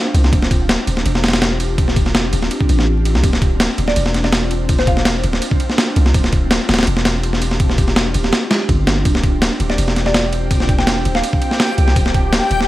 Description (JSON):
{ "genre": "drum and bass, jungle", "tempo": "165 BPM", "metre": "4/4", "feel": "straight", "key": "D minor", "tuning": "A4 = 440 Hz", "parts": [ { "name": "ethereal airy pad", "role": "sustained chords", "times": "0.0-12.7 s", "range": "C4 to D5", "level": "-24 LUFS", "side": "equal", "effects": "ensemble chorus, built-in reverb, phaser" }, { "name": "long sustained 808-style bass", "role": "bass", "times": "0.1-12.7 s", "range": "D1 to C2", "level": "-18 LUFS", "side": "equal", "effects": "none" }, { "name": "breakbeat sampler-style drum kit", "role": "drums", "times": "0.1-12.7 s", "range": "kick drum, ride cymbal, snare drum", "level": "-16 LUFS", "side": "equal", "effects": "studio reverb" }, { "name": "mallet-like synth pluck", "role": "melody", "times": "3.9-5.4, 9.7-11.5 s", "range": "C5 to G5", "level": "-25 LUFS", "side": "right 1 dB", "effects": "analog chorus, dub echo" }, { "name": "backwards swelling texture", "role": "texture", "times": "9.7-12.7 s", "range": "G4 to A5", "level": "-23 LUFS", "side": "left 2 dB", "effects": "built-in reverb" } ], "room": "light reverb", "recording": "vinyl crackle", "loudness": "-13 LUFS", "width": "side -16 dB against mid", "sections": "0.0-12.7 A section", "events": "none", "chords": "0.0 Dm9", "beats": "| 0.33 0.69 1.05 1.42 | 1.78 2.15 2.51 2.87 | 3.24 3.60 3.96 4.33 | 4.69 5.05 5.42 5.78 | 6.15 6.51 6.87 7.24 | 7.60 7.96 8.33 8.69 | 9.05 9.42 9.78 10.15 | 10.51 10.87 11.24 11.60 | 11.96 12.33" }